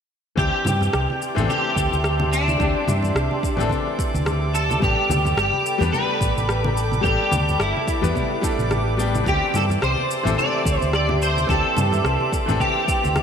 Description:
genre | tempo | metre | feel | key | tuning
sunset chillout | 108 BPM | 4/4 | swing 56% on 16ths | unclear | A4 = 440 Hz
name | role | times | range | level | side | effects
electric guitar at the edge of break-up | melody | 0.4-13.2 s | D4 to D5 | -23 LUFS | equal | ensemble chorus, ping-pong delay
bright grand piano | accompaniment | 0.4-13.2 s | E3 to B4 | -27 LUFS | moving between left 6 dB and right 4 dB | auto-pan, digital delay
lush unison pad | sustained chords | 1.0-13.2 s | G4 to D6 | -29 LUFS | equal | chorus
hollow-body short-scale fingered electric bass | bass | 0.4-13.2 s | G1 to G2 | -23 LUFS | equal | none
electronic kick drum | drums | 0.4-13.0 s | none | -25 LUFS | equal | overdrive, studio reverb
electronic shaker, congas and rim click | drums | 0.4-13.2 s | none | -30 LUFS | left 1 dB | overdrive, studio reverb
drifting glass-harmonics texture | texture | 1.0-13.2 s | D5 to D6 | -33 LUFS | left 2 dB | chorus, built-in reverb
congas | percussion | 0.6-13.1 s | none | -31 LUFS | right 2 dB | none
room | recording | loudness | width
moderate lush hall reverb, RT60 3.0 s | bright 1980s-style digital production | -18 LUFS | side -7 dB against mid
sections
0.4-13.2 A section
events
none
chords
0.4 D9sus4; 4.8 A9sus4; 9.3 D9sus4

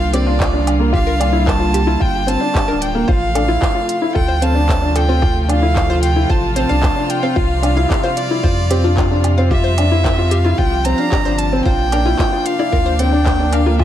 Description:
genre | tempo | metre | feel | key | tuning
piano and strings electronica | 112 BPM | 4/4 | straight | unclear | A4 = 440 Hz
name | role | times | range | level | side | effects
clear violin | melody | 0.0-13.8 s | D5 to Bb5 | -21 LUFS | right 1 dB | digital delay
warm studio string section | sustained chords | 0.0-13.8 s | C3 to F4 | -23 LUFS | equal | sidechain pumping
felt-muted upright piano | riff | 0.0-13.8 s | Bb3 to F4 | -20 LUFS | left 2 dB | digital delay
warm sub bass | bass | 0.0-13.8 s | D1 to F2 | -17 LUFS | equal | sidechain pumping
analog pluck | arpeggios | 0.1-13.8 s | F4 to C6 | -26 LUFS | left 2 dB | chorus, sidechain pumping, digital delay
organic electronic drum kit | drums | 0.1-13.8 s | handclaps, hi-hat, woodblock | -24 LUFS | right 1 dB | overdrive
electronic kick drum | drums | 0.4-13.8 s | none | -18 LUFS | equal | none
room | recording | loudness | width
light reverb | none | -13 LUFS | side -11 dB against mid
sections
0.0-13.8 A section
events
none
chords
0.0 Gm7; 3.1 F/A; 7.4 Csus4; 11.7 Bbadd9

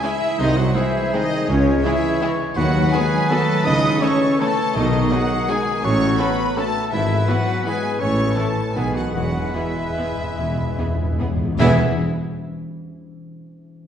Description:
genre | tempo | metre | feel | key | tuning
classical, orchestral ballroom waltz | 137-181 BPM | 3/4 | rubato | E major | A4 = 440 Hz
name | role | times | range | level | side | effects
rich studio violin section | melody | 0.0-11.8 s | C#5 to D#6 | -28 LUFS | left 3 dB | none
clear clarinet | second line | 0.0-11.8 s | G#4 to E5 | -30 LUFS | left 2 dB | none
flute section | second line | 0.0-11.8 s | G#4 to D#6 | -31 LUFS | left 1 dB | none
rich studio violin section | second line | 0.0-11.8 s | B3 to B4 | -32 LUFS | left 2 dB | none
warm oboe | second line | 0.0-11.8 s | F#4 to G#5 | -30 LUFS | equal | none
clear studio viola section | accompaniment | 0.0-11.8 s | D#3 to C#4 | -31 LUFS | right 1 dB | none
mellow bassoon | accompaniment | 0.0-11.8 s | D#3 to B3 | -31 LUFS | right 1 dB | none
mellow French horn section | sustained chords | 0.0-11.8 s | C#3 to E4 | -26 LUFS | left 2 dB | none
concert harp | arpeggios | 0.0-11.8 s | G#2 to E5 | -27 LUFS | left 2 dB | none
mellow trumpet | stabs | 0.0-11.8 s | C#4 to D#5 | -26 LUFS | right 1 dB | none
clear studio double bass section | bass | 0.4-11.8 s | E1 to D#2 | -27 LUFS | right 1 dB | none
mellow tuba | bass | 0.4-11.7 s | E1 to D#2 | -28 LUFS | right 2 dB | none
rich studio cello section | bass | 0.4-11.8 s | B#1 to C#3 | -26 LUFS | right 2 dB | none
timpani | percussion | 4.8-5.3, 9.1-11.8 s | E2 to B2 | -26 LUFS | equal | none
room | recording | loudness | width
wet scoring stage reverb, RT60 1.5 s | heard from further back in the room, nothing above 10.4 kHz | -17 LUFS | side -9 dB against mid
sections
0.0-11.6 A section; 11.6-12.7 B section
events
timpani fill 9.1-11.6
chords
0.4 G#/B#; 1.5 C#m; 2.6 B/D#; 3.7 A/C#; 4.8 G#m/B; 5.8 F#m/A; 6.9 E/G#; 8.0 A; 8.8 B; 9.1 E

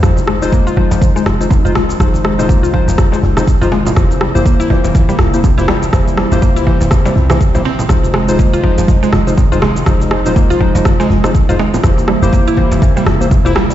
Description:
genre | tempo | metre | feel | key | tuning
afro house | 122 BPM | 4/4 | swing 58% on 16ths | F minor | A4 = 440 Hz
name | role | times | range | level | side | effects
warm analog pad | sustained chords | 0.0-13.7 s | C3 to E4 | -20 LUFS | right 1 dB | chorus, sidechain pumping
mallet-like synth pluck | arpeggios | 0.0-13.7 s | E3 to F4 | -18 LUFS | right 1 dB | chorus, sidechain pumping, digital delay
warm analog keys | stabs | 0.0-13.5 s | Ab3 to C5 | -19 LUFS | left 4 dB | chorus, sidechain pumping, digital delay
warm 808-style bass | bass | 0.0-13.7 s | Eb1 to C2 | -17 LUFS | equal | sidechain pumping
electronic kick drum | drums | 0.0-13.4 s | none | -12 LUFS | equal | none
electronic rim click and shaker | drums | 0.0-13.7 s | none | -21 LUFS | equal | none
congas | percussion | 0.2-13.7 s | none | -22 LUFS | right 3 dB | none
djembe | percussion | 0.2-13.7 s | none | -24 LUFS | left 3 dB | none
room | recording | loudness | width
light reverb, digital ambience | played on a big sound system in a bare room, large studio reverb, nothing above 7.8 kHz | -10 LUFS | side -12 dB against mid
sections
0.0-13.7 A section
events
filter sweep on synth arpeggio sound 0.0-13.7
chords
0.0 Fm7; 4.0 C7/F; 7.9 Fm7; 11.8 C7/F

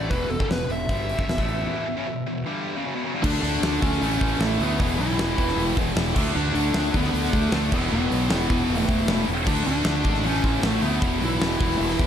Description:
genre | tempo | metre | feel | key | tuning
hard rock | 154 BPM | 4/4 | straight | E minor | A4 = 440 Hz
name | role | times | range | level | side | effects
smooth overdriven lead guitar | melody | 0.0-12.0 s | A3 to E5 | -27 LUFS | equal | tape echo
airy breathy pad | sustained chords | 0.1-12.1 s | E3 to A5 | -36 LUFS | equal | chorus, phaser
heavy high-gain guitar | riff | 0.0-12.1 s | E2 to D4 | -28 LUFS | left 1 dB | distortion
fuzz fingered electric bass | bass | 0.0-12.1 s | E1 to D2 | -27 LUFS | equal | overdrive
huge arena drum kit | drums | 0.1-12.1 s | crash cymbal, hi-hat, kick drum, snare drum | -26 LUFS | equal | none
heavy high-gain guitar | riff | 3.2-12.1 s | E2 to D4 | -29 LUFS | right 1 dB | distortion
room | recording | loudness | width
little or no reverb | lossy compression artefacts | -21 LUFS | side -9 dB against mid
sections
0.0-3.2 A section; 3.2-12.1 B section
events
break 1.7-3.2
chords
0.0 Em; 3.2 D; 4.0 A; 4.8 Em; 6.2 D; 7.7 Em; 9.5 D; 10.2 A; 11.0 Em

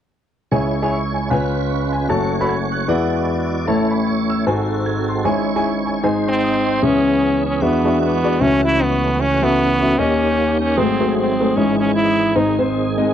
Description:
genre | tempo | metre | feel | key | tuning
uptempo gospel | 152 BPM | 4/4 | swing 58% on 8ths | C# minor | A4 = 440 Hz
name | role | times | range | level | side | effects
warm concert grand piano | accompaniment | 0.5-13.1 s | F#1 to G#6 | -18 LUFS | left 2 dB | none
tonewheel organ | sustained chords | 0.5-13.1 s | C#2 to D5 | -23 LUFS | right 4 dB | slow rotary speaker, chorus vibrato
stopped French horn | melody | 6.3-12.6 s | B3 to E4 | -18 LUFS | right 1 dB | none
room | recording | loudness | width
light reverb | dry, close 1970s-style studio recording | -15 LUFS | side -9 dB against mid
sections
0.5-6.8 A section; 6.8-13.1 B section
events
none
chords
0.5 C#m; 1.3 C#7; 2.1 F#m; 2.9 E9; 3.7 A; 4.5 G#7b9; 5.3 C#m/G#; 6.0 G#; 6.8 C#m7; 7.6 E9; 8.4 A6/C#; 10.0 D#7; 10.8 G#7b9; 11.6 C#m/G#; 12.4 G#

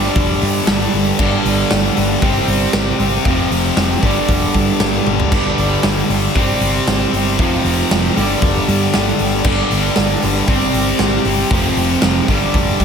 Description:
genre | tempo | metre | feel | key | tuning
hard rock | 116 BPM | 4/4 | straight | unclear | A4 = 440 Hz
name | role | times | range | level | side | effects
overdriven tonewheel organ | sustained chords | 0.0-12.8 s | F3 to D5 | -27 LUFS | left 1 dB | none
heavy high-gain guitar | riff | 0.0-12.8 s | F2 to C4 | -20 LUFS | left 11 dB | distortion
overdriven semi-hollow guitar | riff | 0.0-12.8 s | F2 to C4 | -20 LUFS | right 8 dB | slapback echo
sludgy distorted guitar | riff | 0.0-12.8 s | F2 to C4 | -22 LUFS | equal | overdrive
hollow-body short-scale fingered electric bass | bass | 0.0-12.8 s | F1 to G2 | -20 LUFS | equal | none
big rock drum kit | drums | 0.2-12.8 s | crash cymbal, hi-hat, kick drum, snare drum, toms | -18 LUFS | equal | none
room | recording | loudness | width
moderate lush hall reverb, RT60 2.5 s | big arena sound | -13 LUFS | side -7 dB against mid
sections
0.0-12.8 A section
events
drum fill 5.1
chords
0.0 G5; 2.2 C5/G; 3.3 F5; 4.0 G5; 6.4 C5/G; 7.4 F5; 8.2 G5; 10.5 C5/G; 11.5 F5; 12.3 G5

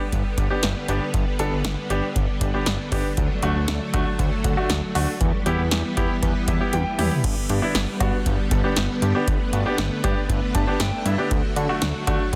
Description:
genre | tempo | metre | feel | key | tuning
synth-pop | 118 BPM | 4/4 | straight | G major | A4 = 440 Hz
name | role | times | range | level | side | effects
string machine, violins | sustained chords | 0.0-12.4 s | D3 to B3 | -31 LUFS | equal | ensemble chorus
fat analog bass | bass | 0.1-12.4 s | G1 to D3 | -27 LUFS | equal | none
electro analog drum machine | drums | 0.1-12.4 s | crash cymbal, hi-hat, kick drum, snare drum, toms | -27 LUFS | equal | none
bright concert grand piano | accompaniment | 0.4-12.2 s | A3 to B5 | -29 LUFS | equal | none
room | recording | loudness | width
light reverb, digital ambience | dense, heavily limited modern master | -23 LUFS | mono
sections
0.0-7.2 A section; 7.2-12.4 B section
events
grand piano fill 6.2-7.2, 10.3-11.3; drum fill 6.7-7.2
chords
0.0 G; 3.2 D; 5.2 Em; 7.2 G; 11.3 D

